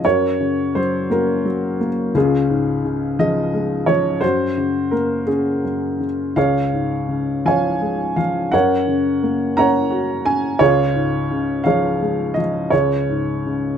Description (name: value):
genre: classical, lyrical solo piano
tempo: 57 BPM (dotted quarters)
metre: 6/8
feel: rubato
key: Db major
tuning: A4 = 441 Hz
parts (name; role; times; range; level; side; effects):
- dark upright piano; solo; 0.0-13.8 s; Db2 to Bb5; -16 LUFS; equal; none
room: light reverb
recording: close, detailed microphones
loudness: -16 LUFS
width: side -8 dB against mid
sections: 0.0-13.8 A section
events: none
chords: 0.0 Gb; 2.2 Db; 4.2 Gb; 6.4 Db; 8.5 Gb; 10.6 Db; 12.7 Db5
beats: | 0.04 1.10 | 2.15 3.19 | 4.22 5.28 | 6.36 7.46 | 8.54 9.58 | 10.60 11.65 | 12.72